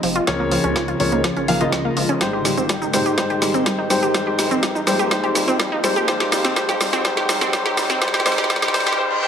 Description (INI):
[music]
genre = progressive house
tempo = 124 BPM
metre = 4/4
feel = straight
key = unclear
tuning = A4 = 438 Hz
[part]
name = shimmering ambient pad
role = sustained chords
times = 0.0-9.0 s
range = Db3 to C5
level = -29 LUFS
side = right 1 dB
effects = chorus, built-in reverb, phaser, sidechain pumping
[part]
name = wide unison pluck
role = arpeggios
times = 0.0-8.9 s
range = F3 to G4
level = -22 LUFS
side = right 1 dB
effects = vintage 12-bit sampler grit, sidechain pumping, digital delay
[part]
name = warm baby grand piano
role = stabs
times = 0.0-9.3 s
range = Ab2 to F5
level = -21 LUFS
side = left 2 dB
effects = sidechain pumping, digital delay
[part]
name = round analog bass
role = bass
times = 0.0-9.0 s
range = Eb1 to Db2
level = -36 LUFS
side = equal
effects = sidechain pumping
[part]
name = deep house drum kit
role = drums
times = 0.0-9.0 s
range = hi-hat, shaker, snare drum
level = -22 LUFS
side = equal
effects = none
[part]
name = riser and reverse cymbal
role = sound effects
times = 0.0-9.3 s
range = none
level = -31 LUFS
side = equal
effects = none
[part]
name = electronic kick drum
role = drums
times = 0.3-8.6 s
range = none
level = -30 LUFS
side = equal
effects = none
[sound]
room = wet digital room reverb, RT60 1.0 s, digital ambience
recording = high-pass filter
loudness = -17 LUFS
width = side -8 dB against mid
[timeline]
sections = 0.0-9.3 A section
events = build-up 0.0-9.3; drum fill 0.0-9.0; filter sweep on synth pluck 0.0-9.3; filter sweep 0.0-9.3; reverse cymbal 9.0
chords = 0.3 Db6; 2.2 Abmaj7; 4.1 Bbsus2; 6.1 Fm7; 8.0 Db6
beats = | 0.27 0.76 1.24 1.73 | 2.21 2.69 3.18 3.66 | 4.14 4.63 5.11 5.60 | 6.08 6.56 7.05 7.53 | 8.02 8.50 8.98